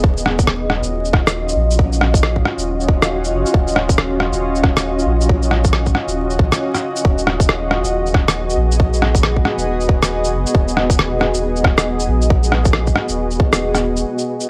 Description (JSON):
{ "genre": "future garage", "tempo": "137 BPM", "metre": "4/4", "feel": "swing 61% on 16ths", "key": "Eb minor", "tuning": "A4 = 440 Hz", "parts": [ { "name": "granular cloud pad", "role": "sustained chords", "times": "0.0-14.5 s", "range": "B3 to Eb5", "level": "-22 LUFS", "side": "equal", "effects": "built-in reverb, vintage 12-bit sampler grit, sidechain pumping" }, { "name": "warm sub bass", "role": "bass", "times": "0.0-14.0 s", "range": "Eb1 to Bb1", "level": "-22 LUFS", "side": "equal", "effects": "sidechain pumping" }, { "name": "electronic kick drum", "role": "drums", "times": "0.0-13.5 s", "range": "none", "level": "-18 LUFS", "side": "equal", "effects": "overdrive, small room reverb" }, { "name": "electronic shaker and rim click", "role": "drums", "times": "0.2-14.5 s", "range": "none", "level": "-21 LUFS", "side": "equal", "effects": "overdrive, small room reverb" } ], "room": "little or no reverb", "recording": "dry, gritty hardware recording, vinyl crackle", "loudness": "-16 LUFS", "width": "mono", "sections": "0.0-14.1 A section", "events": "none", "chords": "0.0 Ebm9; 7.0 B6/D#", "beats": "| 0.04 0.48 0.92 1.35 | 1.79 2.23 2.67 3.11 | 3.54 3.98 4.42 4.86 | 5.30 5.73 6.17 6.61 | 7.05 7.49 7.92 8.36 | 8.80 9.24 9.68 10.11 | 10.55 10.99 11.43 11.87 | 12.30 12.74 13.18 13.62 | 14.05" }